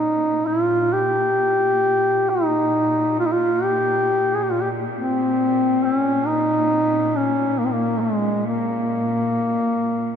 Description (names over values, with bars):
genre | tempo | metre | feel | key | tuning
caucasian folk, Caucasian lament | 68 BPM | 3/4 | rubato | Bb dorian | A4 = 438 Hz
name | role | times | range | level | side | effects
mellow duduk | melody | 0.0-10.2 s | Ab3 to Ab4 | -18 LUFS | equal | none
clear symphonic cello section | drone | 0.0-10.2 s | Bb2 | -29 LUFS | left 2 dB | none
room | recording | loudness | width
moderate cathedral reverb, RT60 6.7 s | nothing above 10.8 kHz | -18 LUFS | side -8 dB against mid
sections
0.0-10.2 A section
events
none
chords
none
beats
| 0.46 1.38 2.29 | 3.18 4.07 4.95 | 5.82 6.70 7.58 | 8.46 9.34